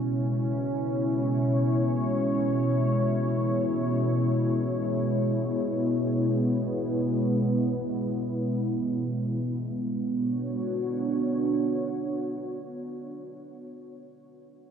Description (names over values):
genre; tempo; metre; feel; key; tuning
ambient; free time; none; none; B dorian; A4 = 440 Hz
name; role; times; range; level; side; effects
deep dark ambient pad; sustained chords; 0.0-13.1 s; B2 to C#5; -25 LUFS; equal; chorus, built-in reverb
room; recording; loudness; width
wet huge ambient reverb, RT60 3.9 s; none; -25 LUFS; side -7 dB against mid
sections
0.0-9.4 A section; 9.4-12.3 B section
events
none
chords
0.0 C#m/B; 9.4 Bmadd9